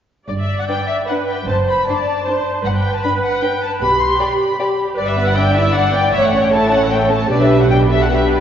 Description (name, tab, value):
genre	quick classical-period movement for string orchestra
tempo	154 BPM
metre	3/4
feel	rubato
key	G major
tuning	A4 = 440 Hz
part	muted studio violin section	melody	0.3-8.4 s	D5 to C6	-19 LUFS	left 2 dB	none
part	muted studio viola section	accompaniment	0.3-8.4 s	G4 to E5	-19 LUFS	right 2 dB	none
part	muted studio cello section	bass	0.3-8.4 s	F#2 to B2	-22 LUFS	right 2 dB	none
part	muted studio double bass section	bass	0.3-8.4 s	F#1 to B1	-22 LUFS	right 1 dB	none
part	muted studio violin section	second line	0.7-8.4 s	G3 to D5	-20 LUFS	left 1 dB	none
room	wet church reverb, RT60 2.7 s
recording	recorded in a church or concert hall, nothing above 7.5 kHz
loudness	-14 LUFS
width	side -9 dB against mid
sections	0.3-8.4 A section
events	none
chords	0.3 G; 1.5 D7/F#; 2.6 G; 3.8 G/B; 5.0 Em7/G; 6.1 A; 7.3 G/B